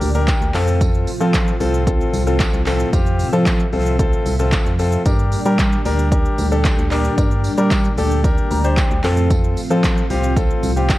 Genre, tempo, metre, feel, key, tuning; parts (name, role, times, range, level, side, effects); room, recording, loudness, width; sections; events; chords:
dance-pop; 113 BPM; 4/4; straight; A4 = 441 Hz
warm concert grand piano; accompaniment; 0.0-11.0 s; C4 to Bb5; -22 LUFS; left 2 dB; sidechain pumping
ensemble organ-string; sustained chords; 0.0-11.0 s; A2 to E5; -25 LUFS; right 1 dB; ensemble chorus, sidechain pumping
solid FM bass; bass; 0.0-10.9 s; C2 to G3; -19 LUFS; equal; sidechain pumping
deep house drum kit; drums; 0.0-11.0 s; handclaps, hi-hat, kick drum, shaker; -19 LUFS; equal
tambourine; percussion; 0.0-11.0 s; -39 LUFS; right 7 dB
little or no reverb; worn, warbling old tape, cassette tape, warbly pitch drift; -15 LUFS; side -16 dB against mid
0.0-11.0 A section
grand piano fill 0.0-0.8, 8.2-9.3
0.0 Gm; 0.5 F; 5.1 Gm; 9.0 F